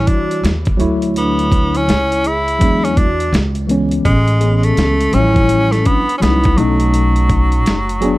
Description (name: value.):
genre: hip hop, jazz-hop.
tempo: 83 BPM.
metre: 4/4.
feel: swing 62% on 16ths.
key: A major.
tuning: A4 = 438 Hz.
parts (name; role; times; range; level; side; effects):
bright tenor saxophone; melody; 0.0-8.2 s; F#3 to E4; -18 LUFS; equal; none.
vibraphone with soft mallets; second line; 0.0-8.2 s; A3 to G#4; -23 LUFS; equal; none.
mellow tine electric piano; accompaniment; 0.0-8.2 s; E3 to C#5; -17 LUFS; left 1 dB; medium stereo tremolo.
upright bass; bass; 0.0-8.2 s; F#1 to E2; -17 LUFS; equal; none.
dusty soul sampler-style drum kit; drums; 0.1-8.2 s; hi-hat, kick drum, snare drum; -17 LUFS; equal; overdrive.
room: small room ambience.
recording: dark, warm production, vinyl crackle.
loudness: -12 LUFS.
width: side -18 dB against mid.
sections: 0.0-8.2 A section.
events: none.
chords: 0.0 A7 (rootless); 0.8 Dmaj7; 2.6 E7; 3.3 C#m7; 4.1 Amaj7; 5.1 A7b13; 6.6 B7.